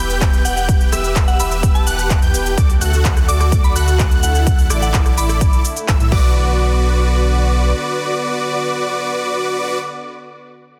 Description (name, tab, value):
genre	EDM, festival progressive house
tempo	127 BPM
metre	4/4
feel	straight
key	B minor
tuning	A4 = 440 Hz
part	soft synth bell	melody	0.0-5.6 s	F#5 to D6	-28 LUFS	equal	chorus, tape echo
part	lush unison pad	sustained chords	0.0-9.8 s	D3 to G4	-30 LUFS	equal	chorus, sidechain pumping
part	unison lead	arpeggios	0.0-9.8 s	D6 to G6	-27 LUFS	equal	sidechain pumping, tape echo
part	supersaw chords	riff	0.0-9.8 s	E4 to G5	-25 LUFS	equal	sidechain pumping, tape echo
part	saturated sub bass	bass	0.0-7.7 s	E1 to A2	-20 LUFS	equal	sidechain pumping
part	big-room dance drum kit	drums	0.1-6.2 s	crash cymbal, handclaps, hi-hat, rim click, shaker	-26 LUFS	equal	overdrive
part	electronic kick drum	drums	0.2-6.2 s	none	-17 LUFS	equal	overdrive
room	light reverb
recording	dense, heavily limited modern master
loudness	-16 LUFS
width	mono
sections	0.0-6.4 A section; 6.4-10.1 B section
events	drop 0.0-6.4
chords	0.0 Em; 2.6 D; 4.5 Asus4; 6.1 Bm